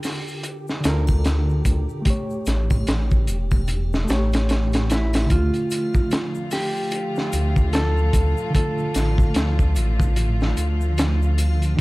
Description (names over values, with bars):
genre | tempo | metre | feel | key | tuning
trip hop | 74 BPM | 4/4 | swing 59% on 16ths | D harmonic minor | A4 = 439 Hz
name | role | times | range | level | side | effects
reed electric piano | accompaniment | 0.0-11.8 s | D3 to C#5 | -29 LUFS | equal | tremolo, tape echo
crunchy breakbeat drum kit | drums | 0.0-11.8 s | hi-hat, kick drum, snare drum | -22 LUFS | equal | none
egg shaker and triangle | percussion | 0.0-11.8 s | none | -42 LUFS | left 6 dB | none
flickering grainy texture | texture | 0.0-5.3 s | G4 | -40 LUFS | right 2 dB | built-in reverb
dark detuned saw bass | bass | 0.8-11.8 s | E1 to D2 | -20 LUFS | equal | tube saturation
mellow electric guitar | melody | 4.9-10.1 s | E4 to A4 | -28 LUFS | equal | vintage 12-bit sampler grit, dub echo
dark chamber string section | sustained chords | 5.3-11.8 s | D3 to F4 | -29 LUFS | right 1 dB | none
room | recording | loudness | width
studio ambience | dark, warm production | -18 LUFS | side -21 dB against mid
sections
0.0-5.3 A section; 5.3-11.8 B section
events
none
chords
0.0 Gm9/D; 2.1 A7; 5.3 Dm